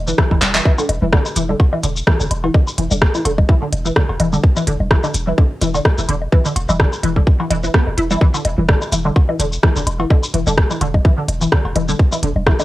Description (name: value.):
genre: minimal techno.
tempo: 127 BPM.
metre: 4/4.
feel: swing 55% on 16ths.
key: unclear.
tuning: A4 = 441 Hz.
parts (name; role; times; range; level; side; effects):
punchy sub bass; bass; 0.0-12.5 s; E1; -21 LUFS; equal; sidechain pumping.
resonant blip pluck; riff; 0.1-12.6 s; D3 to E4; -21 LUFS; equal; phaser, ensemble chorus, sidechain pumping, cassette tape, analog delay.
garage drum kit; drums; 0.1-12.6 s; handclaps, hi-hat, rim click, shaker; -20 LUFS; equal; cassette tape.
electronic kick drum; drums; 0.2-12.6 s; none; -14 LUFS; equal; cassette tape.
bongos, congas, cowbell and woodblock; percussion; 0.3-12.6 s; none; -24 LUFS; left 1 dB; cassette tape, analog delay.
room: light reverb.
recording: home recording on cassette.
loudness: -13 LUFS.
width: side -16 dB against mid.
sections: 0.0-12.6 A section.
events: drum fill 0.4.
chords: none.